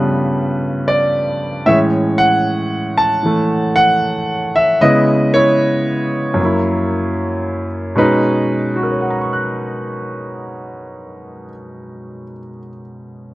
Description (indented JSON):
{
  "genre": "solo jazz",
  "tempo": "76 BPM",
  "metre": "4/4",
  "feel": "swing 66% on 8ths",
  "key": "B major",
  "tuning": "A4 = 440 Hz",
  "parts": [
    { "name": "clear grand piano", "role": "solo", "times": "0.0-13.3 s", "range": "F#2 to F#6", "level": "-15 LUFS", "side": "equal", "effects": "none" }
  ],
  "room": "light reverb",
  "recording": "close, detailed microphones",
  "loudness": "-13 LUFS",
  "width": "side -18 dB against mid",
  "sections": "0.0-8.0 A section; 8.0-11.1 B section",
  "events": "none",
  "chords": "0.0 G9; 1.7 Amaj7; 4.8 C#m7; 6.4 F#7; 8.0 B69"
}